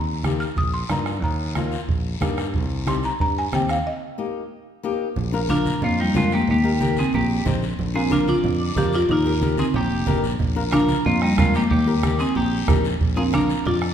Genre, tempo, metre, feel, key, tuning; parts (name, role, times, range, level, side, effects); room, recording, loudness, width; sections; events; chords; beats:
latin, cumbia; 184 BPM; 4/4; straight; Eb major; A4 = 440 Hz
buzzing marimba with medium hard mallets; melody; 0.0-13.9 s; G3 to F6; -22 LUFS; equal
fingered electric bass; bass; 0.0-13.9 s; F1 to G2; -26 LUFS; left 1 dB
flamenco guitar; accompaniment; 0.2-13.6 s; Bb3 to C5; -28 LUFS; left 4 dB
bombo; percussion; 0.2-3.9, 10.4-13.9 s; -25 LUFS; right 3 dB
congas; percussion; 0.2-13.8 s; -27 LUFS; right 3 dB
guiro; percussion; 0.2-13.9 s; -36 LUFS; left 6 dB
electric guitar at the edge of break-up; second line; 5.5-13.9 s; Eb4 to D5; -28 LUFS; right 1 dB
moderate scoring stage reverb, RT60 1.5 s; recorded in a church or concert hall; -19 LUFS; side -9 dB against mid
0.0-5.2 A section; 5.2-13.9 B section
break 3.9-5.2
0.0 Eb; 2.5 Cm; 3.9 Eb; 5.2 Bb; 6.5 Eb; 7.8 Bb; 9.1 Eb; 10.4 Bb; 11.7 Eb; 13.0 Bb
0.24 0.57 0.90 | 1.23 1.56 1.89 2.22 | 2.54 2.87 3.20 3.53 | 3.86 4.19 4.51 4.84 | 5.17 5.50 5.83 6.15 | 6.48 6.81 7.13 7.46 | 7.79 8.12 8.44 8.77 | 9.09 9.42 9.75 10.07 | 10.40 10.72 11.05 11.38 | 11.70 12.03 12.36 12.68 | 13.01 13.34 13.66